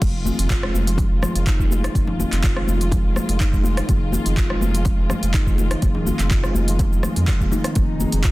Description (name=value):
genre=afro house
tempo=124 BPM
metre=4/4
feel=straight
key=F minor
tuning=A4 = 441 Hz
part: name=dark studio string section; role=sustained chords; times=0.0-8.3 s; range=Eb3 to F4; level=-30 LUFS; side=equal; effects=sidechain pumping
part: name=kalimba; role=arpeggios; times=0.0-8.3 s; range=Eb3 to F4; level=-27 LUFS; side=equal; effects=sidechain pumping, tape echo
part: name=warm sub bass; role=bass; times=0.0-8.3 s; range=F1 to F2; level=-22 LUFS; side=equal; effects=sidechain pumping
part: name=deep house drum kit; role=drums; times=0.0-8.3 s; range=crash cymbal, handclaps, hi-hat, rim click, shaker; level=-28 LUFS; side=equal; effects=studio reverb
part: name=electronic kick drum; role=drums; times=0.0-8.3 s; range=none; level=-20 LUFS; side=equal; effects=studio reverb
part: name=congas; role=percussion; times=0.0-8.1 s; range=none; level=-28 LUFS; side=left 4 dB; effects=none
room=little or no reverb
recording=dense, heavily limited modern master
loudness=-17 LUFS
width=side -19 dB against mid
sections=0.0-8.3 A section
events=drop 0.0-8.3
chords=0.0 Fm7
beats=| 0.02 0.50 0.98 1.47 | 1.95 2.44 2.92 3.40 | 3.89 4.37 4.86 5.34 | 5.82 6.31 6.79 7.28 | 7.76 8.24